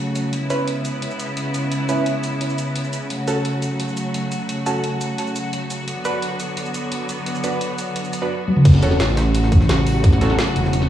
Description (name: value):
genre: dark technical drum and bass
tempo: 173 BPM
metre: 4/4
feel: straight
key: F# minor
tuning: A4 = 440 Hz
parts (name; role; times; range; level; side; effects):
- clear symphonic string section; sustained chords; 0.0-10.9 s; C#3 to F#4; -23 LUFS; equal; sidechain pumping
- drum and bass drum kit; drums; 0.2-10.9 s; crash cymbal, hi-hat, shaker, snare drum, toms; -23 LUFS; equal; none
- band-passed chord stab; stabs; 0.5-10.4 s; C#4 to B4; -26 LUFS; right 2 dB; chorus, phaser, digital delay
- wide detuned saw bass; bass; 8.7-10.9 s; E1 to A1; -17 LUFS; equal; chorus
- electronic kick drum; drums; 8.7-10.1 s; none; -13 LUFS; equal; none
- jungle sampler-style drum kit; drums; 8.7-10.8 s; hi-hat, snare drum; -32 LUFS; right 1 dB; overdrive, high-pass filter on hats, high-pass filter on snare
room: light reverb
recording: played on a big sound system in a bare room, stone room reverb, small room reverb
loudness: -18 LUFS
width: side -11 dB against mid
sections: 0.0-8.7 A section; 8.7-10.9 B section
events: drum fill 8.5; drop 8.7-10.9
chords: 0.3 C#m7; 3.1 F#m; 5.9 Bm; 8.7 F#m